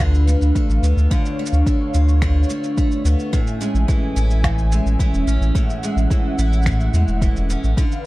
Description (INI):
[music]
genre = folktronica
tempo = 108 BPM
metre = 4/4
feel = straight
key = A major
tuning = A4 = 439 Hz
[part]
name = warm analog pad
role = sustained chords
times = 0.0-8.1 s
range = C#4 to G#5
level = -27 LUFS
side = equal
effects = chorus
[part]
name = picked twelve-string acoustic guitar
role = arpeggios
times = 0.0-8.1 s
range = A2 to F4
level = -24 LUFS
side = equal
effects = ping-pong delay
[part]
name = warm sub bass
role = bass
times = 0.0-7.7 s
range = E1 to E2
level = -16 LUFS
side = equal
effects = tube saturation
[part]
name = electronic finger snaps, woodblock and shaker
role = drums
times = 0.0-8.0 s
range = none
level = -30 LUFS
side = right 2 dB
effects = none
[part]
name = electronic kick drum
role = drums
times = 0.0-7.9 s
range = none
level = -20 LUFS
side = equal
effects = overdrive
[sound]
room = little or no reverb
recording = dark, warm production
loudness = -16 LUFS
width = side -19 dB against mid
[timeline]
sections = 0.0-8.1 A section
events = none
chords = 0.0 Dm6; 3.3 Amaj7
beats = 0.00 0.56 | 1.11 1.67 2.22 2.78 | 3.33 3.89 4.44 5.00 | 5.55 6.11 6.67 7.22 | 7.78